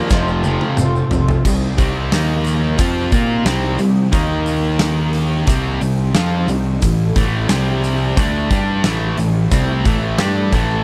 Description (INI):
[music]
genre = classic rock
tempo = 89 BPM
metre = 4/4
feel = straight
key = C dorian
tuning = A4 = 440 Hz
[part]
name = picked twelve-string acoustic guitar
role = accompaniment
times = 0.0-1.5 s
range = F2 to F4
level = -27 LUFS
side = equal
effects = none
[part]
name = string machine, cellos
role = sustained chords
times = 0.0-10.8 s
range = G3 to Bb4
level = -31 LUFS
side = equal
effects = none
[part]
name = sludgy distorted guitar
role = riff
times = 0.0-10.8 s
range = F2 to Bb4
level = -22 LUFS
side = equal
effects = overdrive
[part]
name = fuzz picked electric bass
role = bass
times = 0.1-10.8 s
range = F1 to Bb2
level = -22 LUFS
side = equal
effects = overdrive
[part]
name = huge arena drum kit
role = drums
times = 0.1-10.7 s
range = crash cymbal, hi-hat, kick drum, snare drum, toms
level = -22 LUFS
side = equal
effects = none
[part]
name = tube shaker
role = percussion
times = 0.1-10.7 s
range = none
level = -38 LUFS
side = equal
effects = none
[sound]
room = little or no reverb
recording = none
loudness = -17 LUFS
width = mono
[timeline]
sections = 0.0-1.4 A section; 1.4-10.8 B section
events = drum fill 0.1-1.4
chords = 0.1 F; 1.4 Cm; 2.1 Eb5; 2.8 Cm; 4.1 Eb5; 5.5 Cm; 6.8 A5; 7.5 C5; 8.2 A5